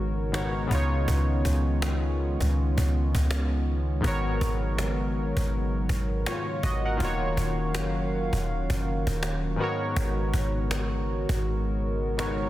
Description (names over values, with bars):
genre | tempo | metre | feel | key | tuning
contemporary R&B | 81 BPM | 4/4 | swing 58% on 16ths | G# dorian | A4 = 440 Hz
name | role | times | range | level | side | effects
warm analog keys | accompaniment | 0.0-12.5 s | G#2 to F#5 | -30 LUFS | left 1 dB | chorus
hollow soft pad | sustained chords | 0.0-12.5 s | C#3 to E#5 | -33 LUFS | right 1 dB | chorus
clean 808-style bass | bass | 0.0-12.5 s | D#1 to C#2 | -27 LUFS | equal | none
cajon | drums | 0.3-12.4 s | none | -34 LUFS | equal | none
room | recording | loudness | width
little or no reverb | dense, heavily limited modern master | -24 LUFS | side -15 dB against mid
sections
0.0-12.5 A section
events
none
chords
0.0 G#m11; 0.7 C#9; 4.0 G#m11; 7.0 D#m9; 9.6 G#m11